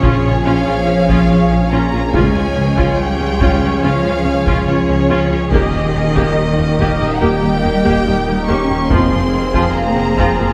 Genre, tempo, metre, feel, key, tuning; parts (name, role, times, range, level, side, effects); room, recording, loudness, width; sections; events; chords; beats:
cinematic, hybrid orchestral and electronic film score; 71 BPM; 4/4; straight; Bb dorian; A4 = 438 Hz
clear symphonic violin section; melody; 0.0-10.5 s; Db5 to Db6; -25 LUFS; equal
rich symphonic violin section; second line; 0.0-10.5 s; G4 to Db5; -26 LUFS; equal
clear symphonic viola section; accompaniment; 0.0-10.5 s; F3 to G4; -22 LUFS; equal
phased analog pad; sustained chords; 0.0-10.5 s; Eb3 to F5; -22 LUFS; equal; phaser, chorus
rich symphonic double bass section; bass; 0.0-10.5 s; Bb1 to F2; -24 LUFS; equal
warm symphonic cello section; bass; 0.0-10.5 s; Db3 to Db4; -22 LUFS; equal
detuned saw bass; bass; 0.0-10.5 s; Eb1 to Db2; -24 LUFS; equal; chorus
taiko ensemble; drums; 0.0-10.5 s; -23 LUFS; equal
wet scoring stage reverb, RT60 1.7 s; -15 LUFS; mono
0.0-10.5 A section
0.0 Bbm7; 2.1 Db; 5.5 Eb; 8.9 Fm
0.45 1.30 | 2.14 2.99 3.83 4.68 | 5.52 6.37 7.21 8.06 | 8.90 9.75